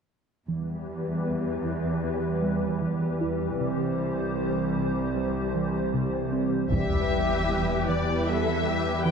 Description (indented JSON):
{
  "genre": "cinematic, hybrid orchestral and electronic film score",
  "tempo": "77 BPM",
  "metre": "4/4",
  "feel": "straight",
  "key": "E minor",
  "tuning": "A4 = 439 Hz",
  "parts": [
    { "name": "hollow soft pad", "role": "sustained chords", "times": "0.5-9.1 s", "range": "E3 to C5", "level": "-29 LUFS", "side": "equal", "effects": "ensemble chorus" },
    { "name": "harp-like synth pluck", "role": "arpeggios", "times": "0.5-9.1 s", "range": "C3 to E4", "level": "-33 LUFS", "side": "equal", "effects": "chorus, digital delay" },
    { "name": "warm symphonic cello section", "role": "bass", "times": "0.5-9.1 s", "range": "C2 to E2", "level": "-30 LUFS", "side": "right 3 dB", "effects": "none" },
    { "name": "warm symphonic violin section", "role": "melody", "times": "6.7-9.1 s", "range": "D5 to G5", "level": "-29 LUFS", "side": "left 5 dB", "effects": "none" },
    { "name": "warm symphonic viola section", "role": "accompaniment", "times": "6.7-9.1 s", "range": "G4 to B4", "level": "-30 LUFS", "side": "left 2 dB", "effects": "none" },
    { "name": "dark trombone section", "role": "sustained chords", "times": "6.7-8.6 s", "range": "E3 to G3", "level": "-35 LUFS", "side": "equal", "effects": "none" },
    { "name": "rich symphonic double bass section", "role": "bass", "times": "6.7-7.5 s", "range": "E1", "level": "-33 LUFS", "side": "right 4 dB", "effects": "none" },
    { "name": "taiko ensemble", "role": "drums", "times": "6.7-8.2 s", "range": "none", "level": "-34 LUFS", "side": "left 1 dB", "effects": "none" },
    { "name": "sub drop", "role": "sound effects", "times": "6.7-9.1 s", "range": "none", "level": "-34 LUFS", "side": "left 1 dB", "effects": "none" }
  ],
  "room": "moderate concert hall reverb, RT60 1.9 s",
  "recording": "none",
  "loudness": "-24 LUFS",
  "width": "side -6 dB against mid",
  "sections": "0.5-6.7 A section; 6.7-9.1 B section",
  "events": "impact 6.7-9.1",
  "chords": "0.5 Em; 3.6 C; 6.7 Em",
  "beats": "| 0.48 1.26 2.04 2.82 | 3.60 4.38 5.16 5.94 | 6.72 7.50 8.28 9.06"
}